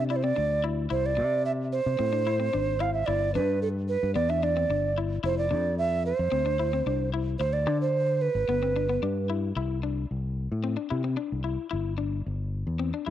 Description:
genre	highlife guitar band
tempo	111 BPM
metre	4/4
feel	straight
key	C major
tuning	A4 = 440 Hz
part	breathy bright alto ocarina	melody	0.0-9.3 s	A4 to F5	-27 LUFS	right 4 dB	cassette tape
part	electric guitar at the edge of break-up	accompaniment	0.0-13.1 s	B3 to E4	-32 LUFS	left 9 dB	cassette tape
part	fingered electric bass	bass	0.0-13.1 s	F1 to D3	-29 LUFS	left 1 dB	none
room	light reverb, studio reverb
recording	home recording on cassette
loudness	-25 LUFS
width	side -11 dB against mid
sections	0.0-9.6 A section; 9.6-13.1 B section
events	none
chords	0.0 Dsus2; 0.9 C; 3.1 G; 5.2 F5; 7.4 N.C.; 8.5 G; 9.6 C; 11.7 G5

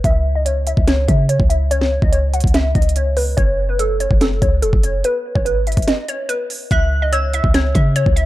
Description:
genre	hip hop, trap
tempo	144 BPM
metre	4/4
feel	half-time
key	C# minor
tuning	A4 = 435 Hz
part	hollow square pluck	melody	0.0-8.3 s	A4 to F#5	-20 LUFS	equal	chorus, low-pass filter, ping-pong delay
part	clean 808-style bass	bass	0.0-8.3 s	E1 to C#3	-17 LUFS	equal	none
part	trap drum kit	drums	0.0-8.3 s	hi-hat, kick drum, snare drum	-18 LUFS	equal	overdrive
part	soft synth bell	second line	6.7-7.9 s	E6 to F#6	-24 LUFS	right 3 dB	chorus, ping-pong delay
room	little or no reverb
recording	dark, warm production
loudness	-14 LUFS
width	side -16 dB against mid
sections	0.0-8.3 A section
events	filter sweep on synth pluck 0.0-6.7; break 5.9-6.7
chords	0.0 C#madd9; 3.4 F#5; 5.0 G#m; 6.7 C#m

